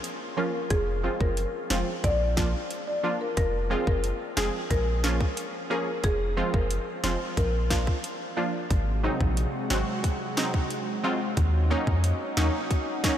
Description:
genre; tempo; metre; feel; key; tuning
dancehall; 90 BPM; 4/4; straight; unclear; A4 = 441 Hz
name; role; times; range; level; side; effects
island pop drum kit; drums; 0.0-13.2 s; hi-hat, kick drum, snare drum; -30 LUFS; equal; none
marimba with medium mallets; melody; 0.4-7.8 s; Ab4 to D5; -32 LUFS; left 1 dB; analog delay
analog pluck; accompaniment; 0.4-13.2 s; F3 to Ab4; -30 LUFS; right 1 dB; chorus
punchy sub bass; bass; 0.7-12.5 s; F1 to F2; -27 LUFS; equal; none
lush unison pad; sustained chords; 8.7-13.2 s; C3 to Gb4; -32 LUFS; equal; chorus
room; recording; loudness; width
moderate huge ambient reverb, RT60 8.2 s; dreamy mix soaked in reverb; -24 LUFS; side -10 dB against mid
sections
0.0-8.7 A section; 8.7-13.2 B section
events
none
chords
0.0 Bbm; 0.7 Fm; 2.0 Bb; 3.4 Fm; 4.7 Bbm; 6.0 Fm; 7.4 Bb; 8.7 Ab7; 11.4 Ebm7

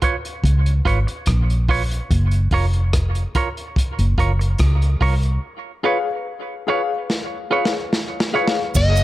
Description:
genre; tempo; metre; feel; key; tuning
dub reggae; 72 BPM; 4/4; straight; unclear; A4 = 442 Hz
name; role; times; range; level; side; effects
clean electric guitar; accompaniment; 0.0-8.5 s; E#4 to C#5; -25 LUFS; right 6 dB; harmonic tremolo, dub echo
crunchy breakbeat drum kit; drums; 0.0-9.0 s; crash cymbal, hi-hat, kick drum, rim click, snare drum; -22 LUFS; equal; none
vintage muted fingered electric bass; bass; 0.4-9.0 s; E#1 to C#2; -17 LUFS; equal; none
dark concert grand piano; stabs; 5.8-8.6 s; G#4 to E#5; -23 LUFS; left 6 dB; dub echo
cabasa; percussion; 8.7-9.0 s; none; -30 LUFS; right 14 dB; none
smooth overdriven lead guitar; melody; 8.8-9.0 s; D#5; -19 LUFS; equal; dub echo
room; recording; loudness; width
light reverb, studio reverb; none; -17 LUFS; side -16 dB against mid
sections
0.0-8.8 A section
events
break 0.0-5.4, 5.4-8.8; drum fill 7.1-8.8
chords
0.0 C#7; 2.1 F#maj7; 5.4 C#7

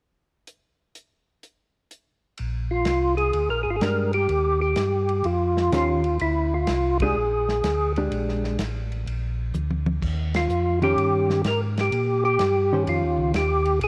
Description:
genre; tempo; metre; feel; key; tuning
soul jazz organ trio; 126 BPM; 4/4; swing 67% on 8ths; unclear; A4 = 440 Hz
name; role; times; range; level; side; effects
warm soul drum kit; drums; 0.5-13.9 s; crash cymbal, hi-hat, kick drum, ride cymbal, snare drum, toms; -35 LUFS; equal; none
mellow tonewheel organ; bass; 2.4-13.9 s; Ab1 to Bb2; -28 LUFS; equal; none
percussive tonewheel organ; melody; 2.7-13.9 s; E4 to Bb4; -25 LUFS; equal; slow rotary speaker, chorus vibrato
hollow-body jazz guitar; accompaniment; 3.8-13.3 s; Eb3 to C5; -30 LUFS; equal; none
room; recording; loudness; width
moderate echo chamber reverb, RT60 2.4 s; none; -23 LUFS; mono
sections
0.5-2.4 A section; 2.4-13.9 B section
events
band accent 6.9, 10.3; drum fill 9.5-10.0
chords
0.5 N.C.; 2.4 Bb13; 4.3 Eb13; 6.2 Bb13; 10.0 Eb13

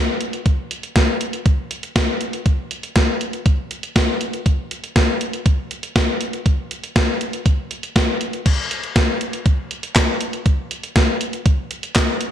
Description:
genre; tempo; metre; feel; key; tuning
pop; 120 BPM; 4/4; straight; none; none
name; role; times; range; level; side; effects
gated 80s digital drum machine; drums; 0.2-12.3 s; crash cymbal, handclaps, hi-hat, kick drum, snare drum; -17 LUFS; equal; gated reverb, gated reverb snare
room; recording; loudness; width
moderate plate reverb, RT60 2.1 s; bright 1980s-style digital production; -17 LUFS; side -10 dB against mid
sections
0.0-8.5 A section; 8.5-12.3 B section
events
none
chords
none

